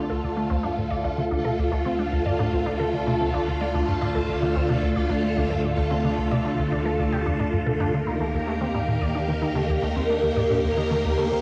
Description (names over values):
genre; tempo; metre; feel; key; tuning
ambient, sequencer-driven space music; 111 BPM; 4/4; straight; D phrygian; A4 = 438 Hz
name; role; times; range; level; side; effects
phased string machine; sustained chords; 0.0-11.4 s; D2 to Bb4; -26 LUFS; equal; ensemble chorus, phaser, cassette tape
unison pluck; arpeggios; 0.0-11.4 s; A3 to D5; -34 LUFS; equal; cassette tape, tape echo
plucky analog bass; riff; 0.0-11.4 s; D2 to Bb3; -30 LUFS; equal; lush chorus, cassette tape, tape echo
wind-like tuned noise texture; texture; 0.2-11.4 s; F5; -39 LUFS; equal; built-in reverb, cassette tape
room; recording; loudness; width
wet studio reverb, RT60 0.6 s; home recording on cassette; -24 LUFS; mono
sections
0.0-11.4 A section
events
filter sweep on analog synth bass 0.0-11.4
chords
0.0 Dm; 7.9 Eb